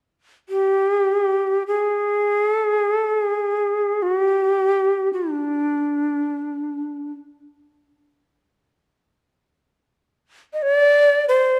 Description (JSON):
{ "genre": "japanese traditional, Japanese chamber music", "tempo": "free time", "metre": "none", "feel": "none", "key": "G miyako bushi", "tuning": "A4 = 437 Hz", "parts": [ { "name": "breathy bright shakuhachi", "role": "solo", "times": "0.5-11.6 s", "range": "D4 to Eb5", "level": "-20 LUFS", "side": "equal", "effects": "none" } ], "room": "moderate recital hall reverb, RT60 1.9 s", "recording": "dark, warm production", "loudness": "-20 LUFS", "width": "mono", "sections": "0.0-11.6 A section", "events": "none", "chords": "none", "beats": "free time" }